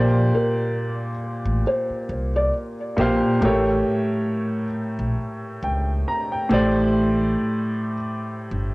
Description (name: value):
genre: lo-fi hip hop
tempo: 68 BPM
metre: 4/4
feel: swing 55% on 16ths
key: unclear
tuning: A4 = 440 Hz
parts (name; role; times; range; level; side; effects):
- warm upright piano; accompaniment; 0.0-8.7 s; A2 to Bb5; -22 LUFS; equal; cassette tape, low-pass filter
- upright bass; bass; 0.0-8.7 s; G1 to C#2; -23 LUFS; equal; none
- felt-muted upright piano; melody; 0.3-2.5 s; Bb4 to D5; -25 LUFS; equal; low-pass filter, cassette tape, analog delay
room: moderate spring reverb, RT60 1.7 s, small room ambience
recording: home recording on cassette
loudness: -20 LUFS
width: side -22 dB against mid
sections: 0.0-8.7 A section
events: none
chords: 0.0 Bb69; 3.4 A7b9; 6.5 D7sus4/A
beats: 0.77 1.65 2.53 | 3.41 4.30 5.18 6.06 | 6.94 7.83 8.71